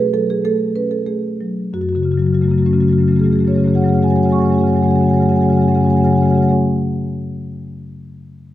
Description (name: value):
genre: classical, contemporary piece for solo marimba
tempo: 90 BPM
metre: 5/4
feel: rubato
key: F# minor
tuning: A4 = 440 Hz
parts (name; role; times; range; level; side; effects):
- marimba with soft mallets; solo; 0.0-6.6 s; F#2 to C#6; -14 LUFS; left 1 dB; none
room: moderate scoring stage reverb, RT60 1.6 s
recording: close, detailed microphones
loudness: -13 LUFS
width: side -13 dB against mid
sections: 0.0-1.7 A section; 1.7-5.1 B section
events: slowing down 0.0-1.7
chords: 0.0 Bsus2; 1.7 F#madd9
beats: 0.42 1.06 | 1.74 2.41 3.09 3.77 4.44